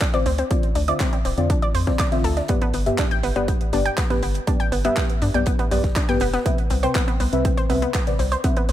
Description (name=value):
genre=progressive house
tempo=121 BPM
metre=4/4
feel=straight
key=unclear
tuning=A4 = 440 Hz
part: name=analog pluck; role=arpeggios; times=0.0-8.7 s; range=B3 to G5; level=-26 LUFS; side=equal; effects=chorus, sidechain pumping, tape echo
part: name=deep reggae drum kit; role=drums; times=0.0-8.7 s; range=hi-hat, snare drum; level=-41 LUFS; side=right 3 dB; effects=none
part: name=electronic kick drum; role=drums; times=0.0-8.5 s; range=none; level=-22 LUFS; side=equal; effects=none
part: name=house drum kit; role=drums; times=0.0-8.7 s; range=handclaps, hi-hat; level=-31 LUFS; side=right 2 dB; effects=none
part: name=deep mellow chord stab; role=stabs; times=0.1-8.6 s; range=G2 to G5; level=-25 LUFS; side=left 2 dB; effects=chorus, sidechain pumping, tape echo
part: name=round analog bass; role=bass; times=0.3-8.7 s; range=D1 to G2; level=-24 LUFS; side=equal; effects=sidechain pumping
room=digital ambience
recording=none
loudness=-18 LUFS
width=side -12 dB against mid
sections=0.0-8.7 A section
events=none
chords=0.0 Dm7; 2.5 G; 6.5 Cmaj7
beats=0.01 | 0.51 1.00 1.50 2.00 | 2.49 2.99 3.48 3.98 | 4.47 4.97 5.47 5.96 | 6.46 6.95 7.45 7.95 | 8.44